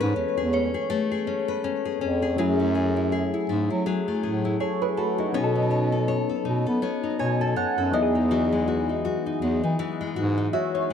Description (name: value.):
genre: R&B.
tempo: 81 BPM.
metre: 4/4.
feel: swing 58% on 16ths.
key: F# dorian.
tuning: A4 = 437 Hz.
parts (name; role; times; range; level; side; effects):
soft electric-piano-like synth keys; accompaniment; 0.0-10.9 s; F#3 to A5; -27 LUFS; equal; chorus, phaser.
nylon-string guitar; arpeggios; 0.0-10.9 s; E3 to C#5; -28 LUFS; left 6 dB; digital delay.
mellow bass clarinet; bass; 0.0-10.5 s; E2 to B3; -25 LUFS; right 1 dB; none.
glassy synth bell; texture; 0.5-2.7 s; C#5; -34 LUFS; equal; chorus, digital delay.
room: light reverb, small room ambience.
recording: dark, warm production.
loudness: -22 LUFS.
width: side -8 dB against mid.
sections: 0.0-2.4 A section; 2.4-10.9 B section.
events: synth keys solo 0.0-2.4; synth keys fill 6.8-8.3.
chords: 0.0 Amaj9; 2.4 F#m9; 7.9 Emaj9.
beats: 0.16 0.90 1.64 | 2.38 3.12 3.86 4.60 | 5.34 6.08 6.83 7.57 | 8.31 9.05 9.79 10.53.